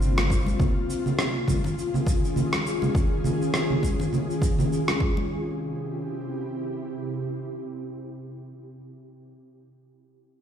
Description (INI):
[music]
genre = sunset chillout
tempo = 102 BPM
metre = 4/4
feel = swing 57% on 16ths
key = unclear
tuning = A4 = 440 Hz
[part]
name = dark grand piano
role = accompaniment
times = 0.0-0.6 s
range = G3 to C5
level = -41 LUFS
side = right 1 dB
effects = auto-pan, digital delay
[part]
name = ethereal airy pad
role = sustained chords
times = 0.0-8.4 s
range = C3 to Ab4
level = -29 LUFS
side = left 1 dB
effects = ensemble chorus, built-in reverb
[part]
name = warm sub bass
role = bass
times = 0.0-0.5 s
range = G1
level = -24 LUFS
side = equal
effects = none
[part]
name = electronic cabasa, rim click and congas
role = drums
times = 0.0-5.0 s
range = none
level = -27 LUFS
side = right 2 dB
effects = none
[part]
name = congas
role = percussion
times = 0.2-5.3 s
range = none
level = -34 LUFS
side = left 3 dB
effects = none
[part]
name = electronic kick drum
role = drums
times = 0.3-5.1 s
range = none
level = -25 LUFS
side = equal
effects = overdrive
[sound]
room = light reverb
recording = played on a big sound system in a bare room, stone room reverb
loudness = -23 LUFS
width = side -9 dB against mid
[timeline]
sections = 0.0-5.3 A section; 5.3-7.7 B section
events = none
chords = 0.0 C9sus4; 0.6 Eb9sus4; 5.0 C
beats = 0.00 | 0.59 1.18 1.77 2.36 | 2.94 3.53 4.12 4.71 | 5.30 5.89 6.47 7.06